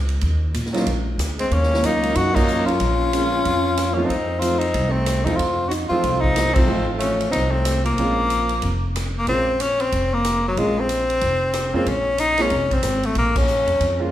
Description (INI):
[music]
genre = jazz, small-group swing and bop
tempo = 186 BPM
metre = 4/4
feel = swing 62% on 8ths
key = Bb minor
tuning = A4 = 439 Hz
[part]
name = upright bass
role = bass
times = 0.0-14.1 s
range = F1 to Bb2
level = -24 LUFS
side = equal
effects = none
[part]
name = swinging big-band drum kit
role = drums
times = 0.1-13.9 s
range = crash cymbal, hi-hat, kick drum, ride cymbal, rim click, snare drum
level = -27 LUFS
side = equal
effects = none
[part]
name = warm baby grand piano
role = accompaniment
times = 0.7-14.1 s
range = F3 to C5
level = -26 LUFS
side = right 2 dB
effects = none
[part]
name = warm tenor saxophone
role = melody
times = 1.4-14.1 s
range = Gb3 to Gb4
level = -20 LUFS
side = left 2 dB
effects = none
[part]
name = growling alto saxophone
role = second line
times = 1.4-8.9 s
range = F3 to Eb4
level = -26 LUFS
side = right 2 dB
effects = none
[sound]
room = wet recital hall reverb, RT60 1.3 s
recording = recorded in a church or concert hall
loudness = -18 LUFS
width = side -12 dB against mid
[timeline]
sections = 0.0-9.3 A section; 9.3-14.1 A section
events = band accent 2.3, 6.5, 13.3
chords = 0.0 Ebm9; 2.8 Bbm9; 4.1 F7; 8.0 Bbm9